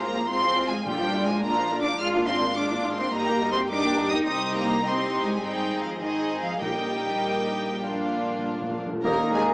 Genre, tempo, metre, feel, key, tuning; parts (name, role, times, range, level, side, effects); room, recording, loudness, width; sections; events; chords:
quick classical-period movement for symphony orchestra; 98-107 BPM; 4/4; rubato; A4 = 440 Hz
warm studio violin section; melody; 0.0-9.4 s; Eb5 to F6; -28 LUFS; equal
warm studio violin section; second line; 0.0-9.5 s; D4 to G5; -31 LUFS; equal
rich studio viola section; accompaniment; 0.0-9.5 s; D3 to Bb4; -29 LUFS; equal
dark studio double bass section; bass; 0.0-9.5 s; G1 to Eb2; -38 LUFS; equal
warm studio cello section; bass; 0.0-9.5 s; Eb2 to F4; -29 LUFS; equal
timpani; percussion; 0.9-1.7, 6.6-9.5 s; Bb2 to Eb3; -34 LUFS; equal
large flute ensemble; second line; 9.0-9.5 s; Ab5 to Bb5; -31 LUFS; equal
warm oboe; second line; 9.0-9.5 s; Bb5; -28 LUFS; equal
dark French horn section; sustained chords; 9.0-9.5 s; Ab3 to Bb3; -28 LUFS; equal
warm clarinet; second line; 9.1-9.5 s; Eb5; -30 LUFS; equal
warm bassoon; accompaniment; 9.1-9.5 s; Bb3; -28 LUFS; equal
wet stone room reverb, RT60 1.2 s; small speaker sound; -23 LUFS; side -27 dB against mid
0.0-9.0 A section
timpani fill 7.8-9.0
0.0 Fm/Ab; 0.9 Bb; 2.0 Bb7/Ab; 3.1 Eb/G; 4.3 Cm; 5.4 Ab; 6.6 Eb/Bb; 7.8 Bb